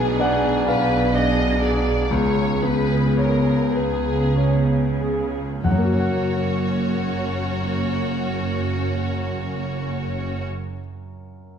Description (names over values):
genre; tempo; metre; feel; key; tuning
classical, romantic movement for piano and orchestra; 30-44 BPM (dotted quarters); 12/8; rubato; F# major; A4 = 440 Hz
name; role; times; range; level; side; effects
clear grand piano; melody; 0.0-11.6 s; B1 to G#5; -23 LUFS; left 2 dB; none
rich studio violin section; second line; 0.0-10.5 s; F#4 to D#5; -28 LUFS; left 2 dB; none
warm studio viola section; accompaniment; 0.0-10.4 s; A#3 to G#4; -26 LUFS; right 2 dB; none
rich studio cello section; bass; 0.0-10.4 s; F#2 to C#3; -27 LUFS; right 2 dB; none
warm studio double bass section; bass; 0.0-10.4 s; F#1 to C#2; -27 LUFS; right 4 dB; none
room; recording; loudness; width
moderate scoring stage reverb, RT60 1.8 s; minimal, uncompressed stereo recording; -19 LUFS; side -8 dB against mid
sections
0.0-5.6 A section; 5.6-11.6 B section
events
slowing down 0.0-5.6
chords
0.0 G#dim/B; 2.1 C#7; 5.6 F#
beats
0.67 2.12 3.75 | 5.64 7.38 9.08 10.78